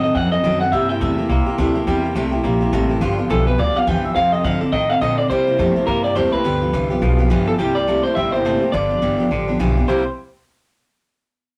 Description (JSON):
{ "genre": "rockabilly", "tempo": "210 BPM", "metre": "4/4", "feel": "swing 60% on 8ths", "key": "C mixolydian", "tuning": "A4 = 441 Hz", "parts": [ { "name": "electric guitar through a small old amp", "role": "melody", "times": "0.0-10.0 s", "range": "G4 to G5", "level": "-22 LUFS", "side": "equal", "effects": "none" }, { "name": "picked steel-string acoustic guitar", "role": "accompaniment", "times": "0.0-10.0 s", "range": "G2 to A4", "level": "-23 LUFS", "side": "equal", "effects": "none" }, { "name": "twangy electric guitar", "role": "riff", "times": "0.0-10.0 s", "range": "F2 to E4", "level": "-28 LUFS", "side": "equal", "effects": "none" }, { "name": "upright bass", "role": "bass", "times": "0.0-10.0 s", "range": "G1 to C3", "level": "-24 LUFS", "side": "equal", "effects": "none" } ], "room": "moderate studio reverb, RT60 0.6 s", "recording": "rough rehearsal-room recording, warm saturation", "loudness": "-18 LUFS", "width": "mono", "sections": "0.0-7.6 A section; 7.6-9.9 B section; 9.9-11.0 C section", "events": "none", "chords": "0.0 F#dim7; 0.7 C7; 3.0 G7; 4.2 F7; 5.3 C7; 6.4 G7; 7.6 C7; 8.7 G7; 9.9 C7" }